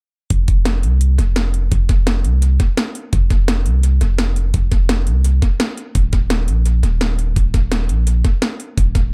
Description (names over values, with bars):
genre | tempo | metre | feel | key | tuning
liquid drum and bass | 170 BPM | 4/4 | straight | unclear | A4 = 440 Hz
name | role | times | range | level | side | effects
long sustained 808-style bass | bass | 0.3-9.1 s | Eb1 to C2 | -18 LUFS | equal | tube saturation
drum and bass drum kit | drums | 0.3-9.0 s | hi-hat, snare drum | -25 LUFS | equal | tape echo
electronic kick drum | drums | 0.3-9.0 s | none | -18 LUFS | equal | none
room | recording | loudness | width
little or no reverb | echo-heavy mix | -17 LUFS | mono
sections
0.3-9.1 A section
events
none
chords
none